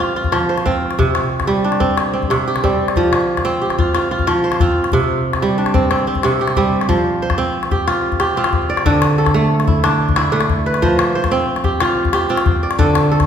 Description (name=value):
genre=west african traditional, West African string and xylophone music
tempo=122 BPM (dotted quarters)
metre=12/8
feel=straight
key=F major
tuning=A4 = 440 Hz
part: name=kora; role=arpeggios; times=0.0-13.3 s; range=C3 to D5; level=-16 LUFS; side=right 2 dB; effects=none
part: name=calabash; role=percussion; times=0.2-13.3 s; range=none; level=-18 LUFS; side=left 4 dB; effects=none
room=wet recital hall reverb, RT60 1.5 s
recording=recorded in a church or concert hall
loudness=-14 LUFS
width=side -8 dB against mid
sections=0.0-6.9 A section; 6.9-13.3 B section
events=none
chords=0.0 F5; 1.0 C5; 3.0 F5; 4.9 C5; 6.9 F5; 8.9 D5; 10.8 F5